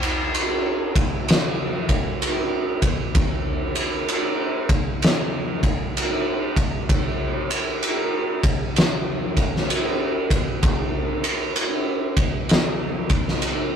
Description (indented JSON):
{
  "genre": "metal",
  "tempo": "64 BPM",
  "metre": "4/4",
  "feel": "swing 65% on 8ths",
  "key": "none",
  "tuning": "none",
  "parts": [
    { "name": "oversized low-tuned drum kit", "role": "drums", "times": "0.0-13.7 s", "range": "kick drum, ride cymbal, snare drum", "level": "-20 LUFS", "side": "equal", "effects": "none" }
  ],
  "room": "little or no reverb",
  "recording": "rough rehearsal-room recording",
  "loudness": "-20 LUFS",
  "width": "side -8 dB against mid",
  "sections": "0.0-13.8 A section",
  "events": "none",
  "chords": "none"
}